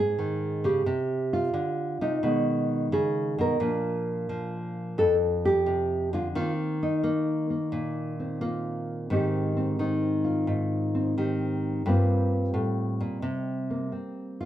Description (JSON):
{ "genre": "solo jazz", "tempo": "87 BPM", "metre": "4/4", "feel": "swing 67% on 8ths", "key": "unclear", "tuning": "A4 = 440 Hz", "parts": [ { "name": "nylon-string guitar", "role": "solo", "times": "0.0-14.5 s", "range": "F2 to Bb4", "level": "-25 LUFS", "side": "equal", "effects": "none" } ], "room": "light reverb", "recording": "dark, warm production", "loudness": "-25 LUFS", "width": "side -12 dB against mid", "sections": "0.0-14.5 A section", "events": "none", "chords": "0.0 Dbsus2; 0.9 Csus2; 2.2 B69; 3.6 Bb; 6.4 Ebsus2; 9.1 Abmaj7; 11.9 Gm11; 13.2 C7(no3)" }